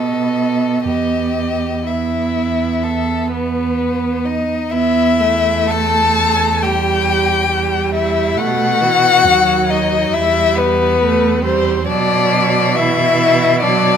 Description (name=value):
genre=classical, slow romantic movement for string quartet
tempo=59-70 BPM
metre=4/4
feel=rubato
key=E minor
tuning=A4 = 440 Hz
part: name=warm violin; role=melody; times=0.0-14.0 s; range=B4 to A5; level=-16 LUFS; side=left 6 dB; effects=none
part: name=clear violin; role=second line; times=0.0-14.0 s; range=B3 to A4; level=-21 LUFS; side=equal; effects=none
part: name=rich viola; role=accompaniment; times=0.0-14.0 s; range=E3 to B3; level=-19 LUFS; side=right 6 dB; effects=none
part: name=rich cello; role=bass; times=0.0-14.0 s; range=D#2 to B2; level=-22 LUFS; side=right 4 dB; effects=none
room=moderate recital hall reverb, RT60 1.4 s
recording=close, detailed microphones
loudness=-13 LUFS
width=side -8 dB against mid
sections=0.0-4.7 A section; 4.7-14.0 A section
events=none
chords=0.0 B7; 0.9 Em; 8.4 B7; 10.1 Em; 11.9 Bm